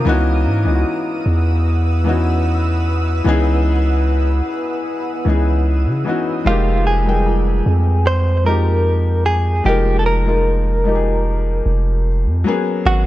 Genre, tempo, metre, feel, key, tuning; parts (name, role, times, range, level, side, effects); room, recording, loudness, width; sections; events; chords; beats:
R&B; 75 BPM; 4/4; straight; A4 = 438 Hz
felt-muted upright piano; accompaniment; 0.0-13.1 s; Fb3 to G5; -20 LUFS; left 3 dB
granular cloud pad; sustained chords; 0.0-6.4 s; Cb5 to Fb6; -27 LUFS; right 2 dB; built-in reverb
long sustained 808-style bass; bass; 0.0-13.1 s; F1 to Db3; -16 LUFS; equal
direct-recorded clean electric guitar; melody; 6.5-13.1 s; F4 to C5; -20 LUFS; right 1 dB; tremolo
celesta; texture; 7.3-12.8 s; F4 to Eb5; -31 LUFS; right 4 dB; digital delay
little or no reverb; dark, warm production; -14 LUFS; side -15 dB against mid
0.0-6.5 A section; 6.5-13.1 B section
0.1 Dbm11; 6.5 Fm11; 12.5 Abm11
| 0.06 0.85 1.66 2.46 | 3.25 4.05 4.86 5.66 | 6.46 7.25 8.05 8.86 | 9.65 10.46 11.26 12.05 | 12.86